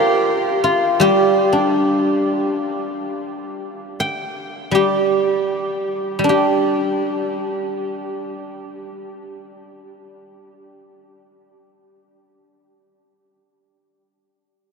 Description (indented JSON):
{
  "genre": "chinese traditional, Chinese solo plucked strings",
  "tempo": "free time",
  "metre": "none",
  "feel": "none",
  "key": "G yu mode",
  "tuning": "A4 = 437 Hz",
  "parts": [
    { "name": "guzheng", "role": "solo", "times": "0.0-12.3 s", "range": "G3 to C6", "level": "-17 LUFS", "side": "equal", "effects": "none" }
  ],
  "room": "wet huge ambient reverb, RT60 7.6 s",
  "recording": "in a vast, echoing space",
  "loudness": "-16 LUFS",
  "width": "side -4 dB against mid",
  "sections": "0.0-6.3 A section; 6.3-10.9 B section",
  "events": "slowing down 0.0-6.3",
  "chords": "none",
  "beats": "free time"
}